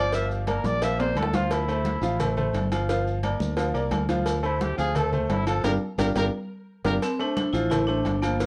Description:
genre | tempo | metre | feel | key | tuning
latin, salsa | 174 BPM | 4/4 | straight | D minor | A4 = 440 Hz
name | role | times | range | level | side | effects
warm trumpet | melody | 0.0-6.9 s | C4 to E5 | -32 LUFS | equal | plate reverb
bright upright piano | accompaniment | 0.0-8.5 s | F3 to F5 | -31 LUFS | equal | none
fingered electric bass | bass | 0.0-8.5 s | G1 to D2 | -30 LUFS | equal | none
congas | percussion | 0.1-8.5 s | none | -35 LUFS | equal | none
cowbell | percussion | 0.1-8.5 s | none | -35 LUFS | equal | none
maracas | percussion | 0.1-8.5 s | none | -47 LUFS | equal | none
timbales and agogo bells | percussion | 0.5-8.4 s | none | -36 LUFS | equal | none
vibraphone with hard mallets | melody | 7.0-8.5 s | Bb3 to E4 | -29 LUFS | equal | plate reverb
room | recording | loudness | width
moderate studio ambience, RT60 0.5 s | worn, warbling old tape, cassette tape, warbly pitch drift | -25 LUFS | mono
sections
0.0-7.0 A section; 7.0-8.5 B section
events
trumpet solo 0.0-7.0; drum fill 1.0-1.5, 6.3-7.0; band accent 5.6-7.0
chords
0.1 Gm7; 1.5 Dm7; 2.9 Gm7; 4.3 Dm7; 5.6 Gm7; 7.0 Dm7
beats
| 0.13 0.47 0.82 1.16 | 1.51 1.85 2.20 2.54 | 2.89 3.23 3.58 3.92 | 4.26 4.61 4.95 5.30 | 5.64 5.99 6.33 6.68 | 7.02 7.37 7.71 8.06 | 8.40

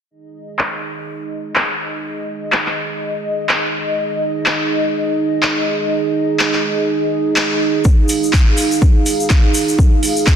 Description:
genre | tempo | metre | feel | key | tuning
bass house | 124 BPM | 4/4 | swing 57% on 16ths | unclear | A4 = 440 Hz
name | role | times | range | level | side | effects
dark analog pad | sustained chords | 0.5-10.4 s | D#4 to E#5 | -18 LUFS | right 2 dB | chorus, sidechain pumping
house drum kit | drums | 0.6-10.4 s | handclaps, hi-hat | -19 LUFS | equal | low-pass filter on snare, studio reverb, low-pass filter on hats
egg shaker | percussion | 7.8-10.4 s | none | -23 LUFS | left 3 dB | none
electronic kick drum | drums | 7.9-10.4 s | none | -12 LUFS | equal | studio reverb
room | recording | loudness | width
moderate lush hall reverb, RT60 1.9 s | dense, heavily limited modern master | -14 LUFS | side -8 dB against mid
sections
0.1-10.4 A section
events
filter sweep on drum 0.1-10.4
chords
0.1 G#5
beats
| 0.11 0.59 1.08 1.56 | 2.04 2.53 3.01 3.50 | 3.98 4.46 4.95 5.43 | 5.92 6.40 6.88 7.37 | 7.85 8.33 8.82 9.30 | 9.79 10.27

